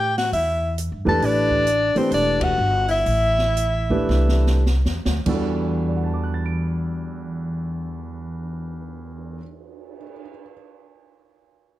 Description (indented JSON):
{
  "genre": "modal jazz",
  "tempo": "95-136 BPM",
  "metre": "4/4",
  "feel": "swing 65% on 8ths",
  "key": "E minor",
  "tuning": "A4 = 440 Hz",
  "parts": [
    { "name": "warm soprano saxophone", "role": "melody", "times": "0.0-4.6 s", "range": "C5 to A5", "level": "-21 LUFS", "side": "equal", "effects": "none" },
    { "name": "breathy alto saxophone", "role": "second line", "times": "0.0-4.6 s", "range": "C4 to A4", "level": "-27 LUFS", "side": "left 5 dB", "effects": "none" },
    { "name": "upright bass", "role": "bass", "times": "0.0-9.3 s", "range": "E1 to A2", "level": "-24 LUFS", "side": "equal", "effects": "none" },
    { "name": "open jazz drum kit", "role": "drums", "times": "0.2-10.2 s", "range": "crash cymbal, cymbal swell, hi-hat, kick drum, ride cymbal, snare drum", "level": "-32 LUFS", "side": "equal", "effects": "none" },
    { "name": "warm concert grand piano", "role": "accompaniment", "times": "1.1-10.5 s", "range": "E2 to D7", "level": "-25 LUFS", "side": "right 2 dB", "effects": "none" }
  ],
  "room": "light reverb",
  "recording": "none",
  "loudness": "-19 LUFS",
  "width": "side -14 dB against mid",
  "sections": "0.0-5.3 A section; 5.3-10.3 B section",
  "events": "slowing down 1.2-5.3; band accent 2.3; drum fill 4.1-5.3",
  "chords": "0.0 Am11; 5.3 Em11"
}